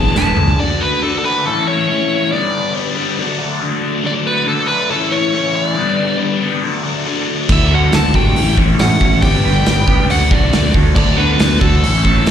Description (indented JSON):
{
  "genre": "indie rock",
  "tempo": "139 BPM",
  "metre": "4/4",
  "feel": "straight",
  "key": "unclear",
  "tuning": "A4 = 440 Hz",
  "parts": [
    { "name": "dark smooth lead guitar", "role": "melody", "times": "0.0-12.3 s", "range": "A4 to A5", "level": "-18 LUFS", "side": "equal", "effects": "overdrive, slapback echo" },
    { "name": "bright tonewheel organ", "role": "sustained chords", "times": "0.0-12.3 s", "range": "A4 to D6", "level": "-27 LUFS", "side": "right 1 dB", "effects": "slow rotary speaker, chorus vibrato" },
    { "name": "biting overdriven guitar", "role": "riff", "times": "0.0-12.3 s", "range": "G2 to G#4", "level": "-18 LUFS", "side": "left 4 dB", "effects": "phaser, slapback echo" },
    { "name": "fuzz fingered electric bass", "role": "bass", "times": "0.0-0.5, 7.5-12.3 s", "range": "E1 to D2", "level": "-16 LUFS", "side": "equal", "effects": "overdrive" },
    { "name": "electric guitar through a small old amp", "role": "riff", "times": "0.2-0.4, 7.7-12.3 s", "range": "A3 to B4", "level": "-23 LUFS", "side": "right 11 dB", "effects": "lush chorus, slapback echo" },
    { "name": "loose indie drum kit", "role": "drums", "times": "0.2-0.6, 7.5-12.3 s", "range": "crash cymbal, hi-hat, kick drum, snare drum, toms", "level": "-15 LUFS", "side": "right 1 dB", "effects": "none" },
    { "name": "tambourine", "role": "percussion", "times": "0.2-0.3, 7.9-12.3 s", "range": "none", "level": "-32 LUFS", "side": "right 3 dB", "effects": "none" },
    { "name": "tine electric piano", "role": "second line", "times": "7.5-12.3 s", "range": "A3 to A4", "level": "-27 LUFS", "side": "equal", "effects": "medium stereo tremolo, slapback echo" }
  ],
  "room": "studio ambience",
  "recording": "live gig heard through the venue's PA, recital hall reverb",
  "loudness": "-12 LUFS",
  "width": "side -9 dB against mid",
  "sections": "0.6-12.3 A section",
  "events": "drum fill 0.2-0.6",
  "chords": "0.0 E7sus4; 0.6 D; 1.5 A; 2.3 Gadd9; 3.2 D; 4.9 A; 5.8 Gadd9; 6.6 D; 8.4 A; 9.2 Gadd9; 10.1 D"
}